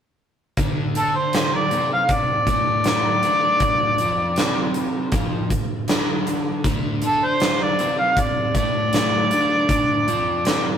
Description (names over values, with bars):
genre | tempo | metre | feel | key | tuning
blues rock power trio and southern rock | 79 BPM | 4/4 | straight | unclear | A4 = 440 Hz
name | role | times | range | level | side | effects
overdriven semi-hollow guitar | riff | 0.6-10.8 s | D2 to D4 | -26 LUFS | left 1 dB | none
huge arena drum kit | drums | 0.6-10.6 s | hi-hat, kick drum, snare drum | -22 LUFS | right 1 dB | none
mellow harmonica | melody | 1.0-10.8 s | A4 to F5 | -20 LUFS | equal | overdrive
room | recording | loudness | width
moderate stone room reverb, RT60 1.3 s | rough rehearsal-room recording | -18 LUFS | side -8 dB against mid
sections
0.6-10.8 A section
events
none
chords
0.6 D5